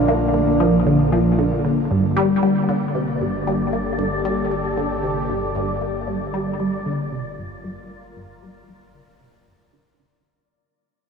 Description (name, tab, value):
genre	ambient, sequencer-driven space music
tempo	115 BPM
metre	4/4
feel	straight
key	G minor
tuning	A4 = 440 Hz
part	soft octave-layered synth lead	melody	0.0-1.4 s	D4	-25 LUFS	right 1 dB	chorus, shimmer reverb, tape echo
part	sweeping resonant pad	sustained chords	0.0-10.3 s	D3 to Bb4	-25 LUFS	left 2 dB	chorus, shimmer reverb
part	analog drone	bass	0.0-10.2 s	G1 to Bb1	-29 LUFS	equal	chorus
part	wind-like tuned noise texture	texture	0.0-10.3 s	Bb3 to D5	-30 LUFS	left 2 dB	built-in reverb, shimmer reverb
part	resonant blip pluck	riff	0.1-10.2 s	G2 to Bb3	-21 LUFS	right 1 dB	phaser, shimmer reverb, tape echo
room	wet huge ambient reverb, RT60 7.4 s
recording	none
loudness	-18 LUFS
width	side -6 dB against mid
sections	0.0-1.9 A section; 1.9-10.3 B section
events	fade-out 1.9-10.3; filter sweep on synth arpeggio sound 1.9-10.3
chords	0.0 Bb; 1.9 Gmadd9